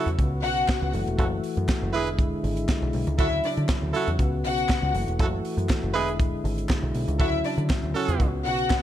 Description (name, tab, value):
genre	disco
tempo	120 BPM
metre	4/4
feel	straight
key	F# minor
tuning	A4 = 441 Hz
part	tonewheel organ	sustained chords	0.0-8.8 s	C#3 to F#4	-30 LUFS	left 2 dB	slow rotary speaker
part	warm horn section	stabs	0.0-8.3 s	C#4 to B4	-29 LUFS	right 5 dB	none
part	overdriven picked electric bass	bass	0.1-8.7 s	E1 to D3	-28 LUFS	equal	none
part	tight funk drum kit	drums	0.1-8.8 s	hi-hat, kick drum, snare drum	-26 LUFS	equal	none
part	warm symphonic string section	second line	0.4-8.8 s	D4 to F#5	-27 LUFS	left 3 dB	none
part	group handclap	percussion	0.7-8.8 s	none	-42 LUFS	left 2 dB	none
room	light reverb, studio reverb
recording	dark, warm production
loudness	-22 LUFS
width	side -11 dB against mid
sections	0.0-8.8 A section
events	none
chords	0.2 C#7sus4; 0.9 F#m7; 1.9 E7; 3.2 Dmaj9; 4.2 C#7sus4; 4.9 F#m7; 5.9 E7; 7.2 Dmaj9; 8.2 C#7sus4